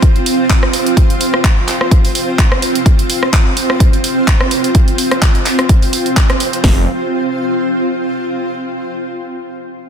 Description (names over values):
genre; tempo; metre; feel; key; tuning
bass house; 127 BPM; 4/4; swing 55% on 16ths; unclear; A4 = 440 Hz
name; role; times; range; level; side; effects
house drum kit; drums; 0.0-6.8 s; hi-hat, kick drum, snare drum; -11 LUFS; equal; none
house drum kit; drums; 0.0-6.6 s; handclaps, hi-hat, rim click; -17 LUFS; right 1 dB; soft clipping on snare
granular cloud pad; texture; 0.0-8.5 s; C4 to F5; -16 LUFS; right 1 dB; built-in reverb, sidechain pumping
phased detuned saw bass; bass; 6.6-6.9 s; F1; -16 LUFS; equal; phaser, overdrive, sidechain pumping
room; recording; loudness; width
light reverb; dense, heavily limited modern master; -11 LUFS; side -8 dB against mid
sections
0.0-6.6 A section; 6.6-8.5 B section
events
none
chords
0.0 F5